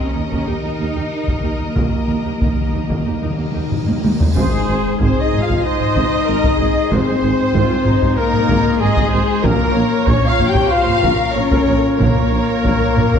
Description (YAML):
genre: cinematic, epic orchestral film score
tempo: 94 BPM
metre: 4/4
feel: straight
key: Ab major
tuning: A4 = 439 Hz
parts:
  - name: warm symphonic violin section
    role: melody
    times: 0.0-13.2 s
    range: Ab4 to G5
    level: -26 LUFS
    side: left 5 dB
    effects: none
  - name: warm symphonic violin section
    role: second line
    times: 0.0-13.2 s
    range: Ab4 to G5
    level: -25 LUFS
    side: left 3 dB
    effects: none
  - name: warm French horn section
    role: sustained chords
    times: 0.0-13.2 s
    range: Ab3 to Eb5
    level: -21 LUFS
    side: left 5 dB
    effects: none
  - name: rich studio cello section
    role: bass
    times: 0.0-13.2 s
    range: Ab2 to Eb4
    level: -26 LUFS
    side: right 4 dB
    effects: none
  - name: timpani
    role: percussion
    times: 0.0-4.3 s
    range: Eb3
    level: -26 LUFS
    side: left 2 dB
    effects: none
  - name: warm symphonic viola section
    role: accompaniment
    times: 0.1-13.2 s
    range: Bb3 to Eb5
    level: -25 LUFS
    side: right 3 dB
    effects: none
  - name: mellow tuba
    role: bass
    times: 0.2-13.0 s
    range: Ab1 to Eb2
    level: -26 LUFS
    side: right 4 dB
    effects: none
  - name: warm symphonic double bass section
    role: bass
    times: 0.2-13.0 s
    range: Ab1 to Eb2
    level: -24 LUFS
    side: right 4 dB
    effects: none
  - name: taiko ensemble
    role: drums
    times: 0.3-13.2 s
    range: none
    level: -20 LUFS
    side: equal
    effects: none
  - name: cymbal swell and impact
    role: sound effects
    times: 3.8-6.9 s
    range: none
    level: -28 LUFS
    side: left 1 dB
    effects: none
  - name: pipe organ, principal chorus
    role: sustained chords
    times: 4.4-13.2 s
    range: Ab3 to C5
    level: -27 LUFS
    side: equal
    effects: none
  - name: warm trumpet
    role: stabs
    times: 4.4-13.2 s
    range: Ab4 to G5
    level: -24 LUFS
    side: equal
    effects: none
room: moderate scoring stage reverb, RT60 1.9 s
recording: dark, warm production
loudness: -14 LUFS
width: side -7 dB against mid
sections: 0.0-4.4 A section; 4.4-13.2 B section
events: timpani fill 0.0-4.4; cymbal swell 3.8-4.4; drum fill 3.7-4.4; impact 4.4-6.9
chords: 0.0 Eb; 4.4 Ab; 9.4 Bbm